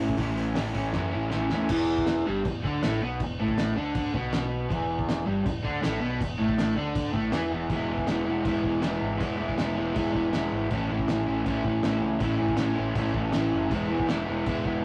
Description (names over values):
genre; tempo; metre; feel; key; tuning
garage rock duo or trio; 160 BPM; 4/4; straight; E major; A4 = 440 Hz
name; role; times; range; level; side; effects
crunchy overdriven guitar; riff; 0.0-14.8 s; E2 to E4; -29 LUFS; equal; none
overdriven picked electric bass; bass; 0.0-14.8 s; E1 to F#2; -36 LUFS; equal; none
cloth-damped thuddy drum kit; drums; 0.0-14.7 s; crash cymbal, hi-hat, kick drum, snare drum; -34 LUFS; equal; none
room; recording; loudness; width
moderate small room ambience, RT60 0.5 s; rough rehearsal-room recording, warm saturation; -27 LUFS; mono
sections
0.0-1.7 A section; 1.7-7.7 B section; 7.7-14.8 C section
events
drum fill 0.9-1.7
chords
0.0 A; 1.7 E5; 7.7 E; 10.7 A; 13.7 E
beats
| 0.20 0.57 0.95 1.32 | 1.70 2.08 2.45 2.83 | 3.20 3.58 3.95 4.33 | 4.70 5.08 5.45 5.83 | 6.20 6.58 6.95 7.33 | 7.70 8.08 8.46 8.83 | 9.21 9.58 9.96 10.34 | 10.71 11.09 11.46 11.84 | 12.21 12.59 12.96 13.34 | 13.71 14.09 14.46 14.84